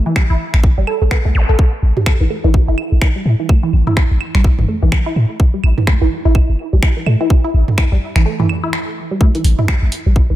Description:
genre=minimal techno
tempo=126 BPM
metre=4/4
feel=swing 59% on 16ths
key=unclear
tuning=A4 = 441 Hz
part: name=resonant blip pluck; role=riff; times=0.1-10.3 s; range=E3 to A4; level=-20 LUFS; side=right 1 dB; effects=phaser, sidechain pumping, diffuse ambient delay
part: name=electronic kick drum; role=drums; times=0.2-10.3 s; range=none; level=-13 LUFS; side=equal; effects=none
part: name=punchy analog drum machine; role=drums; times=0.2-10.0 s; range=finger snaps, hi-hat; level=-24 LUFS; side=equal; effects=none
part: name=electronic claves and toms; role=percussion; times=0.2-9.8 s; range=none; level=-21 LUFS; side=right 2 dB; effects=none
part: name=punchy sub bass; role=bass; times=0.3-10.4 s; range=G1 to A2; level=-12 LUFS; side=equal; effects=sidechain pumping
part: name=zap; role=sound effects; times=1.3-1.5 s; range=none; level=-26 LUFS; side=equal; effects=none
room=light reverb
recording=none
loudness=-12 LUFS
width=side -14 dB against mid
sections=0.0-10.4 A section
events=break 8.3-9.2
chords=0.0 A5

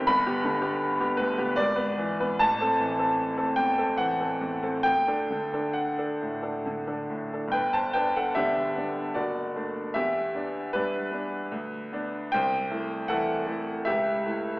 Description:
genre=classical, romantic character piece for solo piano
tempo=66-84 BPM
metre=3/4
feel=rubato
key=G major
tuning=A4 = 444 Hz
part: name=bright grand piano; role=solo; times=0.0-14.6 s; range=F#1 to B5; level=-25 LUFS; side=equal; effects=none
room=wet recital hall reverb, RT60 1.6 s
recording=heard from further back in the room, AM radio sound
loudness=-25 LUFS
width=side -22 dB against mid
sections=0.0-7.5 A section; 7.5-14.6 B section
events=none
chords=0.1 G; 1.6 E7/G#; 2.4 Am; 4.8 D; 7.5 G; 9.2 D/F#; 10.0 Em7; 11.5 Bm/D; 12.3 Am7/C; 13.9 A7/C#

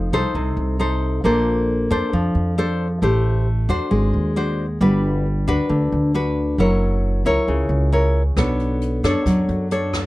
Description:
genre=bossa nova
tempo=135 BPM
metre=4/4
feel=straight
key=unclear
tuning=A4 = 440 Hz
part: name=nylon-string guitar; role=accompaniment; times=0.0-10.1 s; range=C3 to C#5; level=-20 LUFS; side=left 1 dB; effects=none
part: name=upright bass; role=bass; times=0.0-10.1 s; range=F#1 to F#2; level=-21 LUFS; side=equal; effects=none
part: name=jazz brush drum kit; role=drums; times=8.4-10.0 s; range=hi-hat, kick drum, rim click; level=-26 LUFS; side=equal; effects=none
room=little or no reverb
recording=none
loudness=-17 LUFS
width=side -18 dB against mid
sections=0.0-10.1 A section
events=none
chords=0.0 F7; 1.2 Bbmaj9; 3.0 Am7; 3.9 G#7#11; 4.8 Gmaj7; 6.6 F#7; 8.4 Bm9

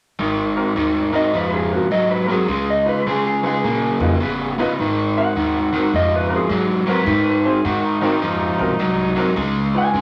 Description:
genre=blues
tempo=105 BPM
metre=4/4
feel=swing 64% on 8ths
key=unclear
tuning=A4 = 440 Hz
part: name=overdriven electric guitar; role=riff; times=0.2-10.0 s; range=Ab2 to Cb4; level=-21 LUFS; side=equal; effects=none
part: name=upright bass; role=bass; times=0.2-10.0 s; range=G1 to Db3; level=-30 LUFS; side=equal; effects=none
part: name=clear concert grand piano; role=accompaniment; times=0.6-9.8 s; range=C4 to C5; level=-27 LUFS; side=equal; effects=none
part: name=electric guitar through a small old amp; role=melody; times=1.2-10.0 s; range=Gb4 to Ab5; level=-23 LUFS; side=equal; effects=none
part: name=overdriven harmonica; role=second line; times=6.9-9.6 s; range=Bb3 to Cb5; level=-26 LUFS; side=equal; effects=none
room=moderate club reverb, RT60 0.7 s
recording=none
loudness=-19 LUFS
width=mono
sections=0.2-10.0 A section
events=none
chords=0.2 Ab7; 2.5 Db7; 4.8 Ab7; 9.4 Db7

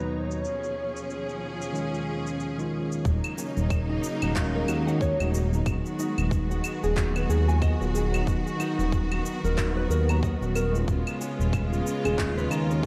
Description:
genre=organic downtempo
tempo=92 BPM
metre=4/4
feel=swing 58% on 16ths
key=Eb minor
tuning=A4 = 440 Hz
part: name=bansuri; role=melody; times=0.0-2.1 s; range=B4 to Db5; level=-37 LUFS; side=equal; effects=tape echo
part: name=tine electric piano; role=accompaniment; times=0.0-12.9 s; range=D#2 to Bb5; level=-36 LUFS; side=equal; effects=vintage 12-bit sampler grit, sidechain pumping, tape echo
part: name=rich symphonic string section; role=sustained chords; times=0.0-12.9 s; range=Eb2 to A#5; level=-34 LUFS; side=equal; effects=sidechain pumping
part: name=twinkling granular texture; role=texture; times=0.0-3.1 s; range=Db5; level=-52 LUFS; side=equal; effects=none
part: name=electronic shaker, claves and handclaps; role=drums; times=0.3-12.8 s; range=none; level=-39 LUFS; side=equal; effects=overdrive, low-pass filter on perc, low-pass filter on snare, low-pass filter on room
part: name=smooth synth bass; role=bass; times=3.1-12.9 s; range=Eb1 to Eb2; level=-28 LUFS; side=equal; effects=sidechain pumping
part: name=electronic kick drum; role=drums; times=3.1-12.9 s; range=none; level=-30 LUFS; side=equal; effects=overdrive
part: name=nylon-string guitar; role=arpeggios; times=3.4-12.9 s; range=Db4 to A#5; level=-35 LUFS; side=equal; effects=tape echo
room=moderate plate reverb, RT60 2.4 s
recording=dreamy mix soaked in reverb, low-pass filter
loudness=-27 LUFS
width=mono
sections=0.0-3.1 A section; 3.1-12.9 B section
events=filter sweep on string section 0.0-3.1; filter sweep 0.0-3.1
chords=0.4 Db7/Eb; 3.1 Ebm7; 5.7 Abm7/Eb; 8.3 Bmaj7/D#; 10.9 Db7/Eb

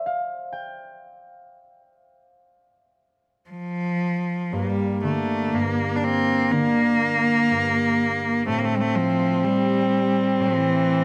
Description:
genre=celtic folk, Celtic slow air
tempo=57-64 BPM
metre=4/4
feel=rubato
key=G dorian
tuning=A4 = 445 Hz
part: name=concert harp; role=accompaniment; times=0.0-11.0 s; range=G2 to G5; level=-31 LUFS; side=equal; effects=none
part: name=clear cello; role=melody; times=3.5-11.0 s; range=E3 to D4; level=-24 LUFS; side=equal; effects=none
part: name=dark viola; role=second line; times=4.5-11.0 s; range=Bb3 to C4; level=-26 LUFS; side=equal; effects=none
room=light reverb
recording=close, detailed microphones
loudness=-22 LUFS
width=mono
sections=0.0-4.5 A section; 4.5-11.0 B section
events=harp solo 0.0-4.5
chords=0.0 N.C.; 4.5 Gm; 8.5 Am7

